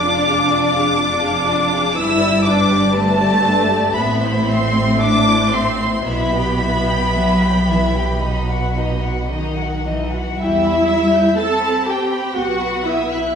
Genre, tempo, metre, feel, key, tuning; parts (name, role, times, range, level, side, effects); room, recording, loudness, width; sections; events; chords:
classical, slow romantic movement for string orchestra; 54-64 BPM; 4/4; rubato; E minor; A4 = 440 Hz
warm chamber violin section; melody; 0.0-13.4 s; F#5 to G6; -20 LUFS; equal
warm chamber violin section; second line; 0.0-13.4 s; C4 to A5; -21 LUFS; left 3 dB
warm symphonic viola section; accompaniment; 0.0-13.4 s; A3 to A4; -21 LUFS; right 1 dB
clear chamber double bass section; bass; 0.0-13.2 s; F1 to E2; -24 LUFS; right 1 dB
warm symphonic cello section; bass; 0.0-13.4 s; F2 to C4; -21 LUFS; equal
wet recital hall reverb, RT60 1.3 s; recorded in a church or concert hall, small room ambience; -14 LUFS; side -7 dB against mid
0.0-10.4 A section; 10.4-13.4 B section
0.0 Ddim/F; 2.0 G; 4.0 Am; 6.0 Em/B; 8.2 B; 10.4 Em; 12.4 B